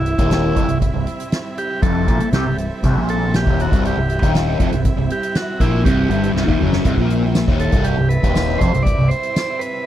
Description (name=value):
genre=psychedelic rock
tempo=119 BPM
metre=4/4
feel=straight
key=unclear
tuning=A4 = 440 Hz
part: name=combo organ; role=melody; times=0.0-9.9 s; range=E4 to D5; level=-24 LUFS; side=right 2 dB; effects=tape echo
part: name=rich studio string section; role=sustained chords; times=0.0-9.9 s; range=G3 to E5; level=-29 LUFS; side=right 4 dB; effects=none
part: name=fuzz guitar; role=riff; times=0.0-9.1 s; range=C2 to C3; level=-19 LUFS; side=left 1 dB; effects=distortion, phaser
part: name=growling fingered electric bass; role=bass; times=0.0-9.1 s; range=C1 to C2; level=-21 LUFS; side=equal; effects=overdrive
part: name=soft-mallet drum kit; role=drums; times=0.1-9.7 s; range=hi-hat, kick drum, snare drum, toms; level=-20 LUFS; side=equal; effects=none
part: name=tambourine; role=percussion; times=7.4-9.5 s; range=none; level=-36 LUFS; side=left 9 dB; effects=none
room=little or no reverb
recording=dry, close 1970s-style studio recording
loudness=-15 LUFS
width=side -12 dB against mid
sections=0.0-9.9 A section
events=transistor combo organ solo 0.0-9.9; drum fill 6.4-6.9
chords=0.0 C